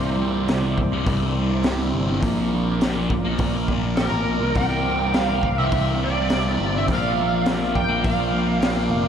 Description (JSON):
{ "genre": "psychedelic rock", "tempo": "103 BPM", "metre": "4/4", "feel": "straight", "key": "C mixolydian", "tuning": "A4 = 440 Hz", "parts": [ { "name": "combo organ", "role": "sustained chords", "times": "0.0-9.1 s", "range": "E3 to D5", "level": "-29 LUFS", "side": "right 1 dB", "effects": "lush chorus" }, { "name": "thick fuzz guitar", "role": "riff", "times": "0.0-9.1 s", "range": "C2 to Bb3", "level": "-25 LUFS", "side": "equal", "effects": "distortion, phaser" }, { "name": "overdriven fingered electric bass", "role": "bass", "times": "0.0-9.1 s", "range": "F1 to C2", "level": "-25 LUFS", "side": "equal", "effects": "none" }, { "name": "raw garage drum kit", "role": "drums", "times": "0.5-8.8 s", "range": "hi-hat, kick drum, snare drum", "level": "-26 LUFS", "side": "equal", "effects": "none" }, { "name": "lead guitar through a small cranked amp", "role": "melody", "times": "4.0-8.9 s", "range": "Bb4 to G5", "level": "-26 LUFS", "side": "right 2 dB", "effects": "wah, overdrive, wide subtle chorus, tape echo" } ], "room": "wet huge ambient reverb, RT60 8.8 s", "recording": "dreamy mix soaked in reverb", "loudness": "-19 LUFS", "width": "side -8 dB against mid", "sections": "0.0-9.1 A section", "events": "none", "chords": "0.0 Cadd9; 2.2 Bb; 4.6 Cadd9; 6.9 Bb", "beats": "0.49 1.07 1.65 | 2.23 2.81 3.39 3.98 | 4.56 5.14 5.72 6.30 | 6.88 7.47 8.05 8.63" }